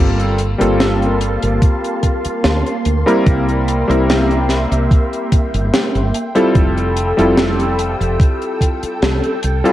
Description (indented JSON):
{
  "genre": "vaporwave",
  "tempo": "73 BPM",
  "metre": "4/4",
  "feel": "straight",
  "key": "F major",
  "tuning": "A4 = 440 Hz",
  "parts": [
    { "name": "warm electric grand piano", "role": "accompaniment", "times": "0.0-9.7 s", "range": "G3 to Bb4", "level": "-17 LUFS", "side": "left 1 dB", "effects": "lush chorus, analog delay" },
    { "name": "soft string machine", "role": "sustained chords", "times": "0.2-9.7 s", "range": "Bb3 to F6", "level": "-23 LUFS", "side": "equal", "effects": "phaser, ensemble chorus" },
    { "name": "woody fretless electric bass", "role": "bass", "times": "0.0-9.6 s", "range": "F1 to D2", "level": "-18 LUFS", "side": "equal", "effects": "none" },
    { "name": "deep reggae drum kit", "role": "drums", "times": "0.2-9.7 s", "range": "hi-hat, snare drum", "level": "-19 LUFS", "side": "equal", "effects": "gated reverb" },
    { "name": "electronic kick drum", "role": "drums", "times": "1.6-8.8 s", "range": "none", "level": "-13 LUFS", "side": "equal", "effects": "none" }
  ],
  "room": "light reverb, small room reverb",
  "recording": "cassette tape",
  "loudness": "-13 LUFS",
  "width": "side -14 dB against mid",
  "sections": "0.0-9.7 A section",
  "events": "none",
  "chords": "0.0 Gm11; 3.3 C7; 6.1 Fmaj9"
}